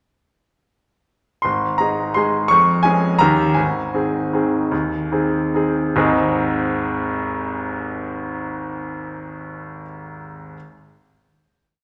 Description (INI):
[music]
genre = classical, piano waltz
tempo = 138-177 BPM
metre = 3/4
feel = rubato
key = Ab major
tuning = A4 = 440 Hz
[part]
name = clear concert grand piano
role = solo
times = 1.4-10.6 s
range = Ab1 to Db6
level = -20 LUFS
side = equal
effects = none
[sound]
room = wet large studio reverb, RT60 1.4 s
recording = none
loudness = -19 LUFS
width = mono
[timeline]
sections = 1.5-6.0 A section; 6.0-8.4 final chord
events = slowing down 3.0-6.0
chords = 1.5 Ab; 2.5 Db/F; 3.2 Eb7; 3.6 Ab